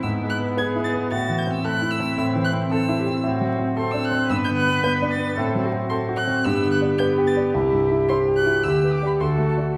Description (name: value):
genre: quick classical-period movement for piano quartet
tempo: 111 BPM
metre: 4/4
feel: rubato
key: G major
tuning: A4 = 444 Hz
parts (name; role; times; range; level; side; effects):
- muted violin; melody; 0.0-9.6 s; A5 to A6; -30 LUFS; equal; none
- muted cello; second line; 0.0-9.8 s; E4 to B4; -27 LUFS; equal; none
- muted viola; accompaniment; 0.0-9.8 s; A3 to G4; -29 LUFS; equal; none
- warm grand piano; accompaniment; 0.0-9.8 s; C2 to C5; -26 LUFS; equal; none
room: moderate scoring stage reverb, RT60 1.9 s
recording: vinyl crackle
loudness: -22 LUFS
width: mono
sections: 0.0-9.8 A section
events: none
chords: 0.0 E/G#; 1.1 Am; 3.3 D7/A; 4.3 G; 5.4 F#dim/A; 6.5 G; 7.6 C; 8.6 G/D; 9.2 D